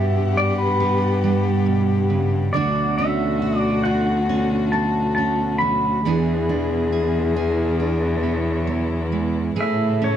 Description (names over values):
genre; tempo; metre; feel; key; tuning
acoustic folk-pop ballad; 68 BPM; 4/4; straight; unclear; A4 = 440 Hz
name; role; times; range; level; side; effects
pedal steel guitar; melody; 0.0-10.2 s; B4 to B5; -23 LUFS; right 1 dB; none
warm viola; second line; 0.0-10.2 s; F#4 to A4; -26 LUFS; left 9 dB; none
fingerpicked steel-string acoustic guitar; accompaniment; 0.0-10.2 s; G2 to G#4; -25 LUFS; right 7 dB; none
warm chamber string section; sustained chords; 0.0-10.2 s; B2 to F#5; -31 LUFS; left 2 dB; none
warm cello; bass; 0.0-10.2 s; D2 to A2; -22 LUFS; equal; none
room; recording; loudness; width
little or no reverb; dry, close 1970s-style studio recording; -18 LUFS; side -10 dB against mid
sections
0.0-10.2 A section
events
none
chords
0.0 Gmaj7; 2.6 Dmaj7; 6.1 E7; 9.6 Amaj7